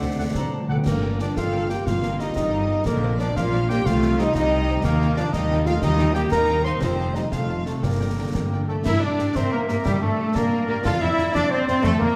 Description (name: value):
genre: cinematic, heroic adventure film score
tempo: 120 BPM (dotted quarters)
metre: 6/8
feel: straight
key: G minor, G dorian from 8.9 s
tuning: A4 = 439 Hz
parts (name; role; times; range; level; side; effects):
- warm symphonic violin section; melody; 0.0-12.1 s; C4 to C6; -38 LUFS; equal; none
- bright concert flute; second line; 0.0-0.9, 9.3-12.2 s; D5 to Bb5; -34 LUFS; equal; none
- warm clarinet; second line; 0.0-8.7 s; A4 to C6; -35 LUFS; equal; none
- warm cor anglais; second line; 0.0-12.2 s; G3 to D5; -34 LUFS; equal; none
- warm symphonic violin section; second line; 0.0-12.2 s; F#4 to A5; -38 LUFS; equal; none
- rich chamber viola section; accompaniment; 0.0-12.2 s; C3 to A4; -31 LUFS; equal; none
- concert harp; arpeggios; 0.0-12.2 s; F2 to Bb5; -34 LUFS; equal; none
- rich symphonic cello section; bass; 0.0-12.2 s; Eb2 to F4; -32 LUFS; equal; none
- warm symphonic double bass section; bass; 0.0-12.1 s; F1 to G2; -30 LUFS; equal; none
- timpani; percussion; 0.0-2.3, 7.8-8.3 s; G2 to D3; -32 LUFS; equal; none
- dark French horn section; sustained chords; 0.2-12.2 s; G3 to C5; -29 LUFS; equal; none
- dark trumpet section; stabs; 0.2-0.8, 8.7-12.2 s; Bb3 to F#5; -32 LUFS; equal; none
- concert snare drum, concert bass drum and clash cymbals; drums; 0.3-12.0 s; none; -32 LUFS; equal; none
room: wet scoring stage reverb, RT60 1.7 s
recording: none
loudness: -22 LUFS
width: mono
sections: 0.9-8.9 A section; 8.9-12.2 B section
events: timpani fill 0.0-0.9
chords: 0.0 D7; 0.9 Gm; 1.9 Ebadd9/G; 2.9 Bbadd9; 3.9 Cm; 4.8 Ebadd9; 6.8 F; 7.8 Gm; 10.9 F